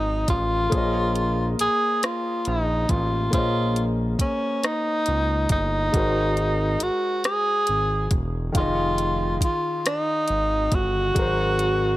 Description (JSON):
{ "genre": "slow six-eight R&B", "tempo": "46 BPM (dotted quarters)", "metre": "6/8", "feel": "straight", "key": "Bb minor", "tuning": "A4 = 440 Hz", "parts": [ { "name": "breathy tenor saxophone", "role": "melody", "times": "0.0-12.0 s", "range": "Db4 to Ab4", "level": "-23 LUFS", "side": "equal", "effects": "tape echo" }, { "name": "warm grand piano", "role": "accompaniment", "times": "0.0-12.0 s", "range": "Eb3 to F5", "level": "-29 LUFS", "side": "left 2 dB", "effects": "none" }, { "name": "smooth synth bass", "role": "bass", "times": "0.0-12.0 s", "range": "E1 to Db2", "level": "-26 LUFS", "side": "equal", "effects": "none" }, { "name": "smooth R&B drum kit", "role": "drums", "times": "0.3-11.8 s", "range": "hi-hat, kick drum, rim click", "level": "-24 LUFS", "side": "equal", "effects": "none" } ], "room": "light reverb", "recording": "none", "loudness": "-20 LUFS", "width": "side -16 dB against mid", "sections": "0.0-12.0 A section", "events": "none", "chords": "0.0 Fm7; 0.7 Bbm11; 5.9 Ab9; 8.5 Fm7; 11.2 Ab9", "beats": "| 0.72 2.03 | 3.33 4.63 | 5.94 7.24 | 8.55 9.85 | 11.16" }